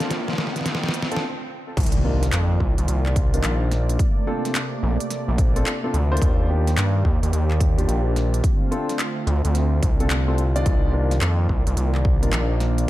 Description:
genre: glitch hop.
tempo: 108 BPM.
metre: 4/4.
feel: swing 64% on 16ths.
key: C dorian.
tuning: A4 = 439 Hz.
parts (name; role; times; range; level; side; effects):
warm analog pad; sustained chords; 0.0-12.9 s; C3 to D5; -29 LUFS; right 2 dB; chorus, sidechain pumping.
dark grand piano; stabs; 0.0-12.9 s; Bb3 to D5; -29 LUFS; left 2 dB; sidechain pumping, tape echo.
dubstep drum kit; drums; 0.0-12.9 s; crash cymbal, handclaps, hi-hat, snare drum; -28 LUFS; equal; studio reverb.
riser and impact; sound effects; 0.0-4.0 s; none; -31 LUFS; right 1 dB; none.
gritty driven synth bass; bass; 0.1-12.9 s; A1 to G2; -21 LUFS; equal; high-pass filter.
electronic kick drum; drums; 1.8-12.2 s; none; -21 LUFS; equal; studio reverb.
room: little or no reverb.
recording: dark, warm production.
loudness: -19 LUFS.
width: side -15 dB against mid.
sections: 0.0-1.8 A section; 1.8-12.9 B section.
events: build-up 0.0-1.8; drum fill 0.0-1.2; riser 0.0-1.2; filter sweep on grand piano 0.0-1.8; stop 1.2-1.8; drop 1.8-12.9; impact 1.8-4.0.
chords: 0.0 Dm7; 1.8 Cm11; 4.0 Bbmaj9; 6.2 Ebmaj7; 8.4 Dm7; 10.7 Cm11.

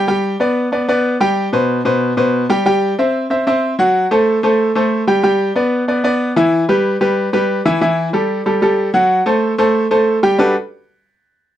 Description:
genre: latin.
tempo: 186 BPM.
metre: 4/4.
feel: straight.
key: G major.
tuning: A4 = 440 Hz.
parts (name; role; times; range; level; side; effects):
bright upright piano; solo; 0.0-10.5 s; B2 to G5; -13 LUFS; equal; none.
room: light reverb.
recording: dry, close 1970s-style studio recording.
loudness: -13 LUFS.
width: side -12 dB against mid.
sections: 0.0-5.2 A section; 5.2-10.4 B section; 10.4-11.6 C section.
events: none.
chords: 0.1 G; 1.4 C5; 2.7 C; 4.0 F#dim; 5.2 G; 6.5 Em; 7.8 A5; 9.1 F#dim; 10.4 Gmaj9.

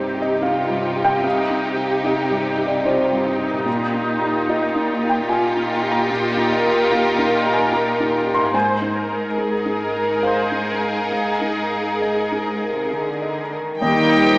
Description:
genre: cinematic, emotional film score for orchestra.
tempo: 66-75 BPM.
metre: 3/4.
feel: rubato.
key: Eb major.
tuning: A4 = 445 Hz.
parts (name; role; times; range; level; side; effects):
warm symphonic violin section; melody; 0.0-14.4 s; G4 to G5; -27 LUFS; left 1 dB; none.
rich symphonic violin section; second line; 0.0-14.4 s; Eb4 to Ab4; -25 LUFS; equal; none.
felt-muted upright piano; accompaniment; 0.0-14.4 s; C2 to C6; -22 LUFS; equal; none.
warm symphonic viola section; accompaniment; 0.0-14.4 s; Eb3 to C5; -23 LUFS; equal; none.
concert harp; arpeggios; 0.0-14.4 s; Ab2 to Eb5; -29 LUFS; equal; none.
rich symphonic cello section; bass; 0.0-14.4 s; Ab2 to G3; -27 LUFS; equal; none.
bright clarinet; second line; 13.8-14.4 s; G4; -25 LUFS; equal; none.
mellow cor anglais; second line; 13.8-14.4 s; Eb5; -24 LUFS; right 1 dB; none.
silver concert flute; second line; 13.8-14.4 s; Bb6; -22 LUFS; equal; none.
dark French horn section; sustained chords; 13.8-14.4 s; Bb3 to Eb4; -23 LUFS; equal; none.
clear symphonic double bass section; bass; 13.8-14.4 s; Eb2; -25 LUFS; equal; none.
room: wet scoring stage reverb, RT60 1.9 s.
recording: recorded in a church or concert hall, small speaker sound.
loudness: -17 LUFS.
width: side -24 dB against mid.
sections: 0.0-13.8 A section.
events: none.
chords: 0.0 Cm; 3.7 Ebadd9/Bb; 8.5 Absus2; 13.8 Eb.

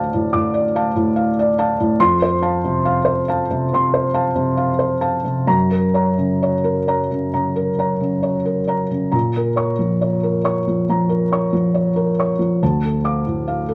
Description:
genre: neoclassical minimalist piano.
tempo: 68 BPM.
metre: 4/4.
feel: uneven beats, rubato.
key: Bb harmonic minor.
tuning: A4 = 441 Hz.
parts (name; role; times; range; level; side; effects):
felt-muted upright piano; solo; 0.0-13.7 s; D2 to D6; -18 LUFS; equal; none.
room: moderate studio reverb, RT60 0.7 s.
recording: vinyl crackle.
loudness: -19 LUFS.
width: mono.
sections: 0.0-13.7 A section.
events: none.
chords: 0.0 Dm; 2.0 F; 5.5 Gb; 9.1 Bbm; 12.6 Dm.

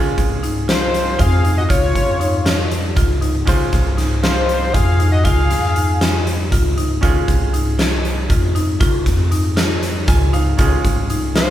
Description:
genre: progressive instrumental, band music in an uneven meter.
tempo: 236 BPM (eighths).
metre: 7/8.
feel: straight.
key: Db major.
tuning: A4 = 441 Hz.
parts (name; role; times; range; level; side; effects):
bright baby grand piano; accompaniment; 0.0-11.5 s; Ab3 to Ab5; -27 LUFS; right 4 dB; none.
marimba with hard mallets; arpeggios; 0.0-11.5 s; Eb4 to F4; -24 LUFS; left 2 dB; none.
upright bass; bass; 0.0-11.5 s; C2 to F2; -19 LUFS; equal; none.
huge arena drum kit; drums; 0.2-11.5 s; hi-hat, kick drum, snare drum; -18 LUFS; equal; none.
fat analog lead; melody; 0.7-6.3, 11.4-11.5 s; C5 to F5; -21 LUFS; left 1 dB; none.
clear flugelhorn; second line; 0.7-6.3, 11.4-11.5 s; F4 to Ab4; -24 LUFS; left 4 dB; none.
room: light reverb.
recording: band playing live in one room.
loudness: -14 LUFS.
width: side -12 dB against mid.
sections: 0.0-11.5 A section.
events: grand piano fill 9.8-10.6.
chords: 0.0 Dbmaj7.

